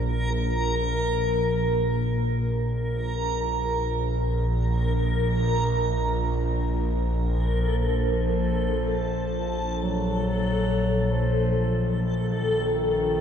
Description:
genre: dark ambient drone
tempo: free time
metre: none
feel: none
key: unclear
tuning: A4 = 441 Hz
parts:
  - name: bowed-like drone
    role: drone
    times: 0.0-13.2 s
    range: Bb1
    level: -25 LUFS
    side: equal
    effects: built-in reverb, phaser
  - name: backwards swelling texture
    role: texture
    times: 0.0-13.2 s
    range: A4 to Bb4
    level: -27 LUFS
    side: equal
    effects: built-in reverb
  - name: warm bass clarinet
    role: melody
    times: 7.3-13.2 s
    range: Eb3 to Gb3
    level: -29 LUFS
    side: left 1 dB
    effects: ping-pong delay
room: wet cathedral reverb, RT60 5.8 s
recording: dark, warm production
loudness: -22 LUFS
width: side -8 dB against mid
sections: 0.0-13.2 A section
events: none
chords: 0.0 N.C.; 7.3 F/Bb

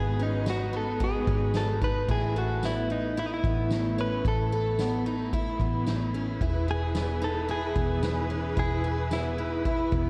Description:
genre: dream pop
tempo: 111 BPM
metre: 4/4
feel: straight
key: unclear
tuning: A4 = 439 Hz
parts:
  - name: direct-recorded clean electric guitar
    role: melody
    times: 0.0-10.1 s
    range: D#4 to B4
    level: -34 LUFS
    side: equal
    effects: harmonic tremolo, delay
  - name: rich studio string section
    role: sustained chords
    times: 0.0-10.1 s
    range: E3 to B4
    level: -38 LUFS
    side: equal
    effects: none
  - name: picked twelve-string acoustic guitar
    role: arpeggios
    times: 0.0-10.1 s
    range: B3 to A4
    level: -36 LUFS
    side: equal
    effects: subtle chorus, delay
  - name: vintage muted picked electric bass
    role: bass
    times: 0.0-10.1 s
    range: E1 to A1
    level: -33 LUFS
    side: equal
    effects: none
  - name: soft-mallet drum kit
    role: drums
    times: 0.2-10.1 s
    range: crash cymbal, kick drum, ride cymbal, snare drum, tambourine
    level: -35 LUFS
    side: equal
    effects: none
room: moderate lush hall reverb, RT60 1.9 s, small room ambience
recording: dreamy mix soaked in reverb, cassette tape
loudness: -28 LUFS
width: mono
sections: 0.0-2.1 A section; 2.1-10.1 B section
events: none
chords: 0.0 G#m7; 2.1 Asus2; 6.4 E

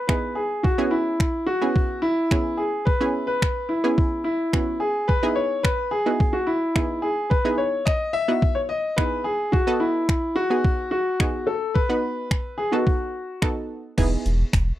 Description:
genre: dance-pop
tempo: 108 BPM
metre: 4/4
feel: straight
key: E major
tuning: A4 = 440 Hz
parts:
  - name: warm concert grand piano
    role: melody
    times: 0.0-13.5 s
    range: E4 to E5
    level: -23 LUFS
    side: left 1 dB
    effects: slapback echo
  - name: analog pluck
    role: accompaniment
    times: 0.1-14.6 s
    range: B3 to D#5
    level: -26 LUFS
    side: right 2 dB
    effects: chorus
  - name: detuned 8-bit digital drum machine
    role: drums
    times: 0.1-14.7 s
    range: crash cymbal, finger snaps, hi-hat, kick drum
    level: -22 LUFS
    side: equal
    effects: overdrive
  - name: warm sub bass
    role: bass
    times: 14.0-14.7 s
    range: E1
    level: -22 LUFS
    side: equal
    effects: sidechain pumping
room: light reverb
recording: dry, close 1970s-style studio recording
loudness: -20 LUFS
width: side -14 dB against mid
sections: 0.0-14.0 A section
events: none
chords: 0.0 Emaj7; 0.6 C#m7; 5.1 Emaj7; 9.5 B7; 14.0 Emaj7

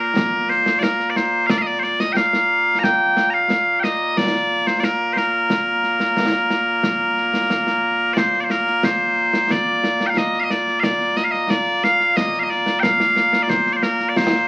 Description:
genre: scottish traditional, Scottish pipe music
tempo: 90 BPM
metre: 4/4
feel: straight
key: Bb major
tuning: A4 = 440 Hz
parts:
  - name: loud bright bagpipes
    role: melody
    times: 0.0-14.5 s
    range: Bb2 to Bb5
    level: -20 LUFS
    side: equal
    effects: none
  - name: concert snare drum and concert bass drum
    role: drums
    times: 0.2-14.3 s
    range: none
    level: -26 LUFS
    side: equal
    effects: none
room: moderate studio reverb, RT60 0.6 s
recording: very old 78 rpm record, vinyl crackle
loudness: -19 LUFS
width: mono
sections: 0.0-8.2 A section; 8.2-14.5 B section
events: none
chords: none

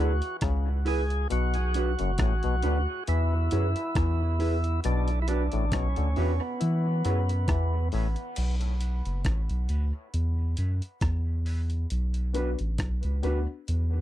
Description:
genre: dub reggae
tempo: 68 BPM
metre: 4/4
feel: swing 55% on 16ths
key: B dorian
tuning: A4 = 439 Hz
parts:
  - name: percussive tonewheel organ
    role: melody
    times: 0.0-7.9 s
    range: B3 to G#4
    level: -33 LUFS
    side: right 1 dB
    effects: overdrive, slow rotary speaker, dub echo
  - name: mellow electric guitar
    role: accompaniment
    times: 0.0-14.0 s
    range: D4 to B4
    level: -35 LUFS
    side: right 4 dB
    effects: high-pass filter, dub echo
  - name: mellow clav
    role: riff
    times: 0.0-8.1 s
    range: F#2 to E4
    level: -36 LUFS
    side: left 10 dB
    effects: dub echo
  - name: soft dub sub bass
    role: bass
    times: 0.0-14.0 s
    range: F#1 to E3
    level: -26 LUFS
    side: equal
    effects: none
  - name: dusty soul sampler-style drum kit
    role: drums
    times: 0.2-13.9 s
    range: crash cymbal, hi-hat, kick drum, rim click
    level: -32 LUFS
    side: equal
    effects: none
  - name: dark grand piano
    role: stabs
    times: 8.8-13.4 s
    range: B3 to B4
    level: -36 LUFS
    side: left 7 dB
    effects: high-pass filter, dub echo
room: little or no reverb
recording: dry, close 1970s-style studio recording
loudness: -25 LUFS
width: side -13 dB against mid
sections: 0.0-8.4 A section; 8.4-14.0 B section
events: break 0.0-8.4; filter sweep 4.8-11.9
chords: 0.0 E; 1.3 Bm; 3.1 E; 4.8 Bm; 6.6 E; 8.4 Bm; 10.1 E; 11.9 Bm

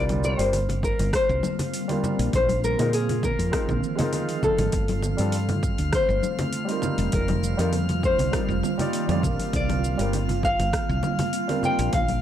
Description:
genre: sunset chillout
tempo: 100 BPM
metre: 4/4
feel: swing 53% on 16ths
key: C minor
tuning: A4 = 440 Hz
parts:
  - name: nylon-string guitar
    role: melody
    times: 0.0-12.2 s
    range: Ab4 to G5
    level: -27 LUFS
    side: left 2 dB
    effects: tape echo
  - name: warm grand piano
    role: accompaniment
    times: 0.0-11.9 s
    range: G3 to D5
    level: -30 LUFS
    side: equal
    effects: auto-pan, tape echo
  - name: ethereal airy pad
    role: sustained chords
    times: 0.3-12.2 s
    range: D3 to F4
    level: -30 LUFS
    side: right 2 dB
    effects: ensemble chorus, built-in reverb, phaser
  - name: woody fretless electric bass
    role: bass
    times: 0.0-12.2 s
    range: F1 to Bb2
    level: -26 LUFS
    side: equal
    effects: none
  - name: drifting glass-harmonics texture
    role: texture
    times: 0.4-12.2 s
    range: F5 to F6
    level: -35 LUFS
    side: right 2 dB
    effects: chorus, built-in reverb
  - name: deep house drum kit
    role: drums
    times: 0.1-12.2 s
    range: congas, hi-hat, rim click, shaker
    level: -32 LUFS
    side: right 2 dB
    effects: overdrive
  - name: congas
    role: percussion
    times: 0.1-12.2 s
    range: none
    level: -31 LUFS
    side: left 3 dB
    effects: none
  - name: electronic kick drum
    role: drums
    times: 0.8-12.1 s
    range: none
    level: -29 LUFS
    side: equal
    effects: overdrive
room: digital ambience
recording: dry, gritty hardware recording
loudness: -21 LUFS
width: side -10 dB against mid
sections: 0.0-12.2 A section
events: none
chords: 0.0 C9sus4; 2.3 Bb9sus4; 4.7 G9sus4; 6.8 F9sus4; 9.5 C9sus4

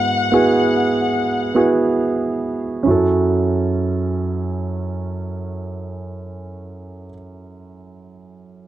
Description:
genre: pop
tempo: 44-50 BPM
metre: 4/4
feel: straight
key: F# minor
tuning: A4 = 435 Hz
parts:
  - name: dark studio violin section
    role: melody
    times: 0.0-1.6 s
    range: F#5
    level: -21 LUFS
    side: left 4 dB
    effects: none
  - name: warm grand piano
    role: accompaniment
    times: 0.0-8.7 s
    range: F#2 to B4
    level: -18 LUFS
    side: right 2 dB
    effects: none
room: light reverb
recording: dry, close 1970s-style studio recording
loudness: -16 LUFS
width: side -13 dB against mid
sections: 0.0-2.9 A section; 2.9-8.3 B section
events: slowing down 0.0-2.9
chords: 0.0 Eadd9/G#; 2.9 F#m7

